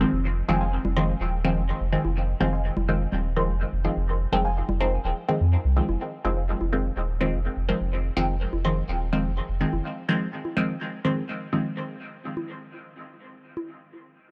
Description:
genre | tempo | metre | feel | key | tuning
dub techno | 125 BPM | 4/4 | straight | F minor | A4 = 440 Hz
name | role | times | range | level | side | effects
filtered dub chord stab | stabs | 0.0-11.8 s | Eb3 to C4 | -29 LUFS | equal | phaser, cassette tape, dub echo
pure sine sub bass | bass | 0.0-9.8 s | Eb1 to F2 | -28 LUFS | equal | none
filtered dub chord stab | riff | 0.5-6.5 s | C5 to Ab5 | -39 LUFS | equal | phaser, lush chorus, cassette tape, dub echo
congas | percussion | 0.5-13.7 s | none | -36 LUFS | equal | dub echo
room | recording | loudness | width
digital ambience | dry, gritty hardware recording, transformer saturation | -26 LUFS | mono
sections
0.0-6.0 A section; 6.0-13.7 B section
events
none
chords
0.0 Fm7

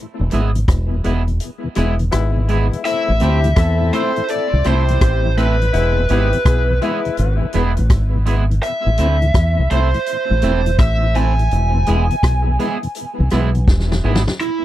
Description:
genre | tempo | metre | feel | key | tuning
roots reggae | 83 BPM | 4/4 | swing 65% on 16ths | A harmonic minor | A4 = 439 Hz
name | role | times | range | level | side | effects
tonewheel organ | accompaniment | 0.2-14.3 s | E2 to E4 | -26 LUFS | left 3 dB | chorus vibrato, slow rotary speaker, tape echo
deep dub fingered electric bass | bass | 0.2-14.3 s | E1 to E2 | -16 LUFS | equal | none
electric guitar at the edge of break-up | accompaniment | 0.3-14.2 s | G#3 to A4 | -25 LUFS | right 5 dB | lush chorus, tape echo
vintage drum kit | drums | 0.3-14.6 s | hi-hat, kick drum, rim click, snare drum | -17 LUFS | equal | none
warm horn section | second line | 1.8-7.5 s | G#3 to A4 | -24 LUFS | left 8 dB | tube saturation, tape echo
lead guitar through a small cranked amp | melody | 2.9-14.6 s | E4 to G#5 | -21 LUFS | right 2 dB | overdrive, tape echo
room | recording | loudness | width
little or no reverb | dry, close 1970s-style studio recording | -14 LUFS | side -14 dB against mid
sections
0.0-2.8 A section; 2.8-14.4 B section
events
band accent 0.0-2.8; kick muted 1.4-2.8; drum fill 13.7-14.4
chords
0.0 E; 2.8 Am; 5.7 E; 8.6 Am; 11.5 E

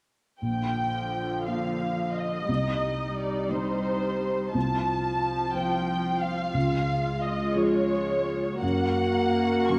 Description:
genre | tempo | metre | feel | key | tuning
cinematic | 59 BPM (dotted quarters) | 6/8 | rubato | Bb major | A4 = 439 Hz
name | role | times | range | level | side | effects
muted studio violin section | melody | 0.4-9.8 s | C5 to Db6 | -32 LUFS | equal | none
felt-muted upright piano | accompaniment | 0.4-9.8 s | Bb1 to F5 | -32 LUFS | equal | none
muted studio viola section | accompaniment | 0.4-9.8 s | D3 to Gb4 | -31 LUFS | equal | none
room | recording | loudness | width
wet scoring stage reverb, RT60 1.8 s | none | -27 LUFS | mono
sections
0.4-9.8 A section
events
none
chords
0.4 Bb; 2.5 Cm; 4.5 F/C; 6.6 Db; 8.6 Gb

